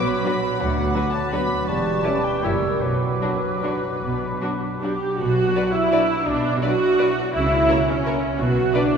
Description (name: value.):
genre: classical, orchestral ballroom waltz.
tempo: 142-182 BPM.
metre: 3/4.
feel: rubato.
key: B minor.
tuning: A4 = 441 Hz.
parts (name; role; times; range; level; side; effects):
dark studio violin section; melody; 0.0-8.8 s; A#4 to B5; -32 LUFS; left 3 dB; none.
hollow silver concert flute; second line; 0.0-5.0 s; C#6 to E6; -32 LUFS; equal; none.
warm oboe; second line; 0.0-5.0 s; B4 to C#5; -32 LUFS; left 1 dB; none.
warm bassoon; accompaniment; 0.0-5.0 s; F#3 to G3; -28 LUFS; right 2 dB; none.
mellow French horn section; sustained chords; 0.0-8.9 s; F#3 to E4; -30 LUFS; left 2 dB; none.
warm studio viola section; accompaniment; 0.2-9.0 s; F#3 to G4; -22 LUFS; right 1 dB; none.
warm studio violin section; second line; 0.3-8.8 s; D4 to D5; -32 LUFS; left 3 dB; none.
rich studio double bass section; bass; 0.6-8.7 s; E1 to D2; -27 LUFS; right 2 dB; none.
warm studio cello section; bass; 0.6-8.7 s; D2 to C#3; -29 LUFS; right 1 dB; none.
room: wet cathedral reverb, RT60 4.9 s.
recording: recorded in a church or concert hall.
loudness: -19 LUFS.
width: side -6 dB against mid.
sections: 0.0-5.2 A section; 5.2-9.0 B section.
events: none.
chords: 0.0 Bm; 0.6 Bm/D; 1.7 C#m7b5/E; 2.4 F#7b9; 2.8 Bm; 7.3 A#dim/C#; 8.4 Bm.